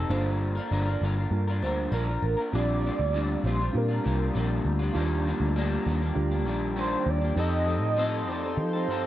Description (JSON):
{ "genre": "indie pop, bedroom pop", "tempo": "99 BPM", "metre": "4/4", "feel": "straight", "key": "Bb major", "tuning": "A4 = 439 Hz", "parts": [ { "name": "electric guitar through a small old amp", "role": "accompaniment", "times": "0.0-9.1 s", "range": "Bb2 to Bb4", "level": "-32 LUFS", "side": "left 4 dB", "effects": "analog chorus, warbly pitch drift, low-pass filter" }, { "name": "warm analog keys", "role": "accompaniment", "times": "0.0-9.1 s", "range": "Bb3 to Bb4", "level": "-33 LUFS", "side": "right 4 dB", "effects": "chorus, cassette tape, low-pass filter" }, { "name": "vintage muted picked electric bass", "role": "bass", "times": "0.0-9.1 s", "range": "G1 to F3", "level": "-27 LUFS", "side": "equal", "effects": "none" }, { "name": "vibraphone with medium mallets", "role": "second line", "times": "0.1-2.4 s", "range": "Bb4 to D5", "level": "-36 LUFS", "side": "right 2 dB", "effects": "wide subtle chorus, analog delay" }, { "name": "warm velvety synth lead", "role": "melody", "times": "1.9-9.1 s", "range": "Bb4 to Eb5", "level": "-31 LUFS", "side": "right 2 dB", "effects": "lush chorus" }, { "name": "warbly tape-like pad", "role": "sustained chords", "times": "3.4-9.1 s", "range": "G4 to C6", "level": "-39 LUFS", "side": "equal", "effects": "chorus, built-in reverb" } ], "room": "light reverb", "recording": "none", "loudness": "-24 LUFS", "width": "side -13 dB against mid", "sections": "0.0-2.5 A section; 2.5-9.1 B section", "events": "none", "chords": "0.1 Gm7; 2.5 Bb6; 4.9 Ebmaj7; 7.4 F7", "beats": "| 0.10 0.70 1.31 1.92 | 2.52 3.13 3.74 4.34 | 4.95 5.55 6.16 6.77 | 7.37 7.98 8.59" }